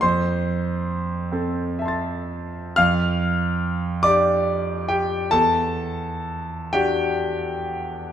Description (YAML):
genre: classical, impressionist solo piano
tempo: 36-49 BPM (dotted quarters)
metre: 6/8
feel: rubato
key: unclear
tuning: A4 = 440 Hz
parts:
  - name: clear concert grand piano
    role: solo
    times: 0.0-8.1 s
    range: E2 to A6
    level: -20 LUFS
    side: equal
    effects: none
room: moderate recital hall reverb, RT60 1.6 s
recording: none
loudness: -20 LUFS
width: side -10 dB against mid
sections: 0.0-8.1 A section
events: none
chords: 0.0 Fmaj7; 2.8 Dmadd11/F; 5.3 Em9